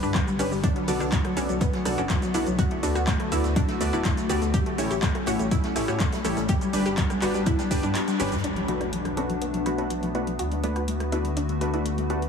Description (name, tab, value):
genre	progressive house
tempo	123 BPM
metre	4/4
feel	straight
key	B minor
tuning	A4 = 440 Hz
part	evolving wavetable pad	sustained chords	0.0-12.3 s	D3 to F#4	-31 LUFS	left 2 dB	chorus, built-in reverb, sidechain pumping
part	analog pluck	arpeggios	0.0-12.3 s	F#3 to A4	-29 LUFS	left 2 dB	chorus, sidechain pumping, dub echo
part	supersaw stab	stabs	0.0-12.2 s	A3 to D5	-30 LUFS	right 1 dB	sidechain pumping, low-pass filter, dub echo
part	dark detuned saw bass	bass	0.0-12.3 s	D1 to A2	-30 LUFS	equal	sidechain pumping
part	deep house drum kit	drums	0.0-12.3 s	handclaps, hi-hat, rim click, shaker	-34 LUFS	equal	overdrive, studio reverb
part	electronic kick drum	drums	0.1-7.8 s	none	-25 LUFS	equal	overdrive, studio reverb
part	natural country drum kit	drums	0.6-8.4 s	hi-hat, snare drum	-42 LUFS	equal	none
part	impact	sound effects	8.4-10.4 s	none	-38 LUFS	left 2 dB	none
room	light reverb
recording	heavily compressed radio sound, multiband compression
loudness	-23 LUFS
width	side -6 dB against mid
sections	0.0-8.4 A section; 8.4-12.3 B section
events	filter sweep on supersaw synth 0.0-8.4; kick drops out 8.0-8.4; band accent 8.0; impact 8.4-10.4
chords	0.0 G; 0.6 Bm7; 2.6 D6; 4.5 A7; 6.5 G; 8.4 Bm7; 10.4 D6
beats	0.15 | 0.64 1.12 1.61 2.10 | 2.59 3.08 3.56 4.05 | 4.54 5.03 5.51 6.00 | 6.49 6.98 7.46 7.95 | 8.44 8.93 9.42 9.90 | 10.39 10.88 11.37 11.86